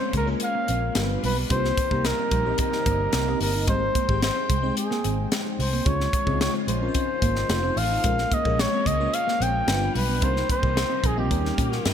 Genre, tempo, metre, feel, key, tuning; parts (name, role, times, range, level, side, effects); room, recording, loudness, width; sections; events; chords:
polished 1980s jazz-funk pop; 110 BPM; 4/4; straight; A4 = 442 Hz
warm flugelhorn; melody; 0.0-11.9 s; G4 to G5; -26 LUFS; equal
FM electric piano with soft pad layer; accompaniment; 0.0-11.9 s; G3 to G5; -30 LUFS; left 3 dB; phaser, analog chorus
string machine, full ensemble; sustained chords; 0.0-11.9 s; C3 to G5; -33 LUFS; left 1 dB; phaser, ensemble chorus
mellow electric guitar; riff; 0.0-11.7 s; G3 to Eb4; -34 LUFS; right 4 dB; wide subtle chorus
vintage muted fingered electric bass; bass; 0.1-11.9 s; F1 to Bb2; -27 LUFS; equal
crisp fusion drum kit; drums; 0.1-11.9 s; hi-hat, kick drum, snare drum; -27 LUFS; equal
moderate lush hall reverb, RT60 2.0 s; bright 1980s-style digital production; -21 LUFS; side -8 dB against mid
0.0-11.9 A section
0.0 Bbm7; 1.0 G7; 1.5 Cm7; 3.7 Abmaj7; 5.9 Dbmaj7; 7.5 F7; 8.0 Bbm7; 9.7 G7; 10.2 Cm7; 11.3 Eb7